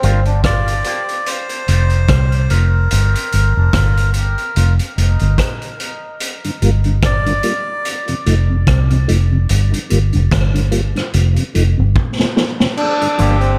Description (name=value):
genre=dub reggae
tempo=73 BPM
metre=4/4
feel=swing 57% on 16ths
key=G minor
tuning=A4 = 440 Hz
part: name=warm trombone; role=second line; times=0.0-5.7, 12.8-13.6 s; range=C4 to G4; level=-27 LUFS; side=equal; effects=high-pass filter, dub echo
part: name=electric guitar with an envelope filter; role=accompaniment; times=0.0-2.7, 13.2-13.4 s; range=Eb3 to F4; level=-31 LUFS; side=equal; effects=spring reverb, high-pass filter, dub echo
part: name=mellow tonewheel organ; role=accompaniment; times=0.0-13.1 s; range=F2 to F4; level=-25 LUFS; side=equal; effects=chorus vibrato, slow rotary speaker, high-pass filter, dub echo
part: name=vintage muted fingered electric bass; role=bass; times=0.0-13.6 s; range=F1 to C2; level=-16 LUFS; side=equal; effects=none
part: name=vintage drum kit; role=drums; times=0.0-13.6 s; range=crash cymbal, hi-hat, kick drum, rim click, snare drum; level=-22 LUFS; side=equal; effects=none
part: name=melodica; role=melody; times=0.5-7.9, 13.2-13.6 s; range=G4 to D5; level=-25 LUFS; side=equal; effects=dub echo
room=light reverb, small room ambience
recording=echo-heavy mix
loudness=-15 LUFS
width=mono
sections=0.0-12.8 A section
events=filter sweep 0.0-6.2; drum fill 12.0-12.8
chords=0.0 Gm7; 1.3 F7; 2.9 Gm7; 4.6 F7; 6.2 Gm7; 7.8 F7; 9.5 Gm7; 11.1 F7; 12.8 Gm7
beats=0.44 1.26 2.09 | 2.91 3.73 4.56 5.38 | 6.20 7.03 7.85 8.67 | 9.49 10.31 11.13 11.96 | 12.78